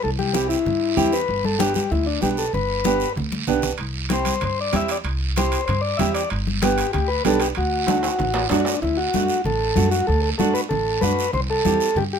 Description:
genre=latin, cumbia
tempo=191 BPM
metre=4/4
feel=straight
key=unclear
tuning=A4 = 440 Hz
part: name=combo organ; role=melody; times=0.0-12.2 s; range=D4 to E5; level=-22 LUFS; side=left 2 dB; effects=none
part: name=upright bass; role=bass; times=0.0-12.2 s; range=G1 to G2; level=-26 LUFS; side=equal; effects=none
part: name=congas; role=percussion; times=0.0-12.1 s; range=none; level=-26 LUFS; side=left 3 dB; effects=none
part: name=guiro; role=percussion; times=0.0-12.2 s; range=none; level=-31 LUFS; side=right 7 dB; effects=none
part: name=nylon-string guitar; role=accompaniment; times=0.3-11.9 s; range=A3 to G4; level=-23 LUFS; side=right 6 dB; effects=none
part: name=timbales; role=percussion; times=3.8-8.7 s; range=none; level=-29 LUFS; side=right 5 dB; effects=none
room=moderate studio reverb, RT60 0.5 s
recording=minimal, uncompressed stereo recording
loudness=-19 LUFS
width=side -7 dB against mid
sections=0.0-8.8 A section; 8.8-12.2 B section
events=drum fill 3.3-3.8, 7.9-8.8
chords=0.0 C; 1.3 G; 3.8 C; 6.3 G; 7.6 D; 11.3 C

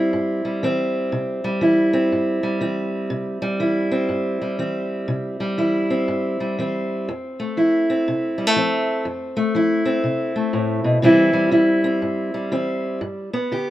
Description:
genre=blues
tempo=121 BPM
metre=4/4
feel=swing 63% on 8ths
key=C major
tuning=A4 = 440 Hz
part: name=fingerpicked steel-string acoustic guitar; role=solo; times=0.0-13.7 s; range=F2 to G4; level=-18 LUFS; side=equal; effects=none
room=small room ambience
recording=rough home demo mix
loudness=-18 LUFS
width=side -14 dB against mid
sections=0.0-13.7 A section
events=none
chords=0.0 C; 7.1 F; 11.0 C; 13.0 G

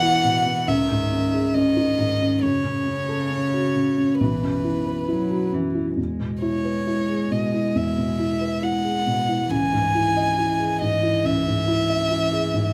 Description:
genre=neoclassical piano and strings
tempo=68 BPM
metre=4/4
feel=rubato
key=E major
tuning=A4 = 439 Hz
part: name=warm violin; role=melody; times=0.0-12.7 s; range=B4 to G#5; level=-27 LUFS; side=equal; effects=none
part: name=warm cello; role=second line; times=0.0-12.7 s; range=C#3 to G#3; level=-31 LUFS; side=equal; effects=none
part: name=felt-muted upright piano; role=accompaniment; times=0.0-12.7 s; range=B1 to E5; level=-25 LUFS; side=equal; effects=none
room=moderate large studio reverb, RT60 0.8 s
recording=none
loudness=-22 LUFS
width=mono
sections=0.0-12.7 A section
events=none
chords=0.0 E; 0.7 C#madd9; 2.4 F#m; 4.2 Bsus4; 6.0 E; 9.5 C#madd9

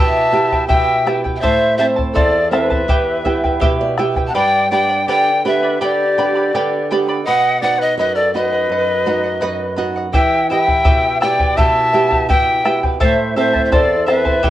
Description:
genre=andean folk, Andean ensemble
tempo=83 BPM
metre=2/4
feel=straight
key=E minor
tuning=A4 = 440 Hz
part: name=breathy bright polished pan flute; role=melody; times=0.0-14.5 s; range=D5 to A5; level=-17 LUFS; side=equal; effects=slapback echo
part: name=breathy bright large quena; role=second line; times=0.0-14.5 s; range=G4 to F#5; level=-21 LUFS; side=left 3 dB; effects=none
part: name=charango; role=accompaniment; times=0.0-14.5 s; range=E4 to B5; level=-20 LUFS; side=right 1 dB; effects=none
part: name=flamenco guitar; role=accompaniment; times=0.0-14.5 s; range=E2 to E5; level=-21 LUFS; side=right 3 dB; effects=none
part: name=bombo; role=percussion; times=0.5-4.3, 10.1-14.5 s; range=none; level=-18 LUFS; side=equal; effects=none
room=moderate small room reverb, RT60 0.5 s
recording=worn, warbling old tape, cassette tape, warbly pitch drift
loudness=-13 LUFS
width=side -13 dB against mid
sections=0.0-4.4 A section; 4.4-14.5 A section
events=speeding up 0.0-14.5; nylon-string guitar fill 3.3-4.4, 9.1-10.1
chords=0.0 Em; 1.4 Am; 2.9 Em; 4.4 G; 7.3 B; 10.1 Em; 13.0 Am

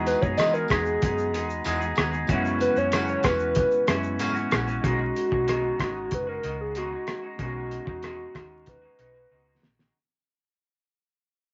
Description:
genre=indie pop, bedroom pop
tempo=94 BPM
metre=4/4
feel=straight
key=B major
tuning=A4 = 441 Hz
part: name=barky tine electric piano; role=accompaniment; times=0.0-10.0 s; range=G#3 to F#4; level=-36 LUFS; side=equal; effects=none
part: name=clean electric guitar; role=accompaniment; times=0.0-10.0 s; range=F#2 to G#4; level=-33 LUFS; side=equal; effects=vibrato effect
part: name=vintage muted fingered electric bass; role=bass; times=0.0-9.9 s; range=F#1 to E3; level=-36 LUFS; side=equal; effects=none
part: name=warbly nostalgic lead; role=melody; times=0.1-9.6 s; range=F#4 to D#5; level=-29 LUFS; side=equal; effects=chorus
part: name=cloth-damped thuddy drum kit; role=drums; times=0.1-9.9 s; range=hi-hat, kick drum, rim click, shaker, snare drum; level=-30 LUFS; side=equal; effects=none
part: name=tambourine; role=percussion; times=0.1-4.7 s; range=none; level=-47 LUFS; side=equal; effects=none
room=moderate studio reverb, RT60 0.5 s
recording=vinyl crackle, nothing above 7.6 kHz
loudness=-26 LUFS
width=mono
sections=0.0-4.8 A section; 4.8-9.9 B section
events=fade-out 4.8-9.9; drum fill 9.3-9.9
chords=0.0 Emaj7; 2.3 F#7sus4; 4.8 B6

